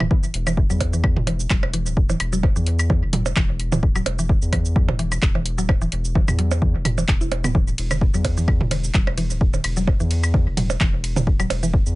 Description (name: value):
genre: minimal techno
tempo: 129 BPM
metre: 4/4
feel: swing 55% on 16ths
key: unclear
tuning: A4 = 442 Hz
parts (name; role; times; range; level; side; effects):
- mallet-like synth pluck; riff; 0.0-11.7 s; D3 to E4; -27 LUFS; equal; chorus, sidechain pumping, dub echo
- saturated sub bass; bass; 0.0-12.0 s; D1 to E2; -23 LUFS; equal; sidechain pumping
- electronic toms and percussion blips; percussion; 0.0-11.6 s; none; -26 LUFS; right 3 dB; tape echo
- electronic kick drum; drums; 0.1-11.8 s; none; -19 LUFS; equal; none
- punchy analog drum machine; drums; 0.2-11.9 s; handclaps, hi-hat, ride cymbal, shaker; -28 LUFS; right 1 dB; none
room: little or no reverb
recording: nothing above 10.7 kHz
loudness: -18 LUFS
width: side -19 dB against mid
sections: 0.1-12.0 A section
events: drop 0.1-12.0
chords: 0.1 E5